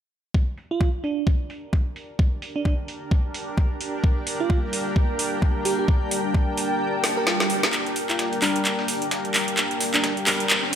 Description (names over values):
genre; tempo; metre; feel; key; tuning
bass house; 130 BPM; 4/4; swing 59% on 16ths; G minor; A4 = 439 Hz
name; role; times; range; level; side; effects
electronic kick drum; drums; 0.3-6.5 s; none; -20 LUFS; equal; overdrive, studio reverb
granular cloud pad; texture; 1.6-10.8 s; D4 to G5; -28 LUFS; left 1 dB; built-in reverb, sidechain pumping
garage drum kit; drums; 0.6-10.8 s; handclaps, hi-hat, snare drum; -23 LUFS; equal; overdrive, low-pass filter on hats, studio reverb, low-pass filter on snare
bell-like FM electric piano; melody; 0.7-10.1 s; D4 to Bb4; -29 LUFS; right 4 dB; chorus, tremolo, tape echo
sweeping resonant pad; sustained chords; 4.0-10.8 s; G3 to A5; -30 LUFS; left 1 dB; chorus, sidechain pumping
swell and riser; sound effects; 7.0-10.8 s; none; -34 LUFS; right 6 dB; none
dusty soul sampler-style drum kit; drums; 7.7-10.8 s; hi-hat, snare drum; -32 LUFS; left 1 dB; high-pass filter on hats, studio reverb, high-pass filter on snare
warm grand piano; stabs; 8.4-10.4 s; G3 to Bb4; -30 LUFS; equal; sidechain pumping, low-pass filter, tape echo
room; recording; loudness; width
light reverb, digital ambience; none; -21 LUFS; side -9 dB against mid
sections
0.3-7.7 A section; 7.7-10.8 B section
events
kick drops out 6.8-7.7; swell 7.0-7.7; drum fill 7.0-7.7, 7.7-10.8; build-up 7.7-10.8; filter sweep on grand piano 7.7-10.8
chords
0.3 Gm